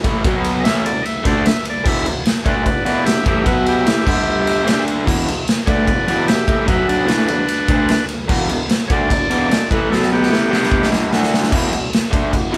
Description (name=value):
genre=garage rock duo or trio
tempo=149 BPM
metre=4/4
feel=straight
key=E minor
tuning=A4 = 440 Hz
part: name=raw garage guitar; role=riff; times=0.0-12.6 s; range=E2 to D4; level=-21 LUFS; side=equal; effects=overdrive
part: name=raw garage drum kit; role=drums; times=0.0-12.6 s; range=crash cymbal, kick drum, ride cymbal, snare drum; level=-20 LUFS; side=equal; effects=none
part: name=overdriven combo organ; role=melody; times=0.6-10.9 s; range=B3 to E5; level=-22 LUFS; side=equal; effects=slapback echo
room=light reverb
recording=band playing live in one room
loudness=-17 LUFS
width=mono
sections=0.0-11.5 A section; 11.5-12.6 B section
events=transistor combo organ solo 0.0-11.5; drum fill 9.9-11.5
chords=0.2 B5; 0.6 E5; 3.5 B5; 3.9 Em; 4.1 G5; 4.7 D5; 5.1 Em; 6.7 B5; 7.1 E5; 9.9 B5; 10.3 Em; 10.5 G5; 11.1 D5; 11.5 E5